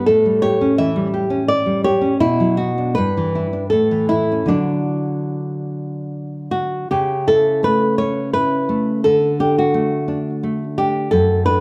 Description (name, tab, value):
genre	romantic duo for nylon-string guitar and classical guitar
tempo	74-88 BPM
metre	3/4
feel	rubato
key	D major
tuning	A4 = 439 Hz
part	flamenco guitar	melody	0.0-11.6 s	D4 to E5	-20 LUFS	equal	none
part	nylon-string guitar	accompaniment	0.0-11.6 s	F#2 to G4	-22 LUFS	equal	none
room	wet recital hall reverb, RT60 1.4 s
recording	dark, warm production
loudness	-18 LUFS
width	mono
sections	0.0-6.9 A section; 6.9-11.6 B section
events	none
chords	0.1 A7; 2.2 Bm; 3.0 G6; 3.7 A; 4.5 D; 6.9 A/C#; 9.1 D